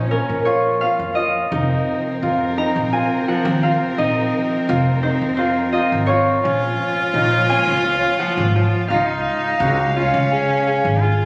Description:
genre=contemporary instrumental, contemporary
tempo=171 BPM (eighths)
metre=7/8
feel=straight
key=unclear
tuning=A4 = 439 Hz
part: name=concert harp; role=melody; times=0.0-10.6 s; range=Bb4 to Bb5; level=-25 LUFS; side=equal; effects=none
part: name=rich cello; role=second line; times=0.0-11.3 s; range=C4 to F4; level=-24 LUFS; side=equal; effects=none
part: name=dark studio string section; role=sustained chords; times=0.0-11.3 s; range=C3 to F5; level=-29 LUFS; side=equal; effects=none
part: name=clear concert grand piano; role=arpeggios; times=0.0-11.3 s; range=F3 to Ab4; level=-25 LUFS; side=equal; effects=none
part: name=upright bass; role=bass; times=0.0-11.2 s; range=F1 to Db3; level=-25 LUFS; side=equal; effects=none
room=moderate recital hall reverb, RT60 1.9 s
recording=recorded on a phone in the room, club reverb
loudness=-19 LUFS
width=mono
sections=0.0-11.3 A section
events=none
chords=0.0 Bbm; 1.5 Fsus4; 6.4 Bbm; 8.9 Db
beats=0.12 0.47 0.82 1.17 | 1.52 1.88 2.23 2.58 2.93 3.28 3.63 | 3.99 4.34 4.69 5.04 5.39 5.75 6.10 | 6.45 6.80 7.15 7.50 7.85 8.21 8.56 | 8.91 9.26 9.61 9.96 10.32 10.67 11.02

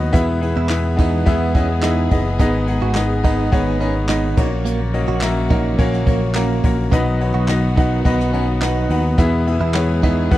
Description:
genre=piano-driven pop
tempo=106 BPM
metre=4/4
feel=straight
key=B major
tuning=A4 = 440 Hz
part: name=clear grand piano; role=accompaniment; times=0.0-10.4 s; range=G#2 to F#5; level=-20 LUFS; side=left 3 dB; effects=none
part: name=warm symphonic string section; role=sustained chords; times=0.0-10.4 s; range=C#3 to G#4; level=-28 LUFS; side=right 1 dB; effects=none
part: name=picked electric bass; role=bass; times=0.0-10.4 s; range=F#1 to E2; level=-20 LUFS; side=equal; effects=none
part: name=direct-recorded clean electric guitar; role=riff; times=0.1-10.4 s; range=A#3 to F#4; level=-25 LUFS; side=right 9 dB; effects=spring reverb
part: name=jazz brush drum kit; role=drums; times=0.1-10.4 s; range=crash cymbal, handclaps, hi-hat, kick drum, ride cymbal, snare drum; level=-18 LUFS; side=equal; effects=none
room=light reverb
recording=dry, close 1970s-style studio recording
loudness=-15 LUFS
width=side -15 dB against mid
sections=0.0-10.4 A section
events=none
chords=0.1 E; 2.4 G#m; 4.4 F#/A#; 6.9 B; 9.2 E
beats=| 0.14 0.70 1.27 1.83 | 2.40 2.96 3.53 4.09 | 4.66 5.22 5.79 6.36 | 6.92 7.49 8.05 8.62 | 9.18 9.75 10.31

